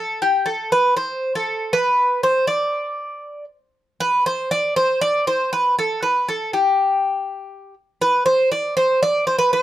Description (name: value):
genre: greek folk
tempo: 119 BPM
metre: 4/4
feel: straight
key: unclear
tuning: A4 = 440 Hz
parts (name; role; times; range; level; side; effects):
- Greek bouzouki; solo; 0.0-9.6 s; G4 to D5; -17 LUFS; equal; none
room: light reverb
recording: dark, warm production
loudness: -17 LUFS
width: side -13 dB against mid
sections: 0.0-9.6 A section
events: none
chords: none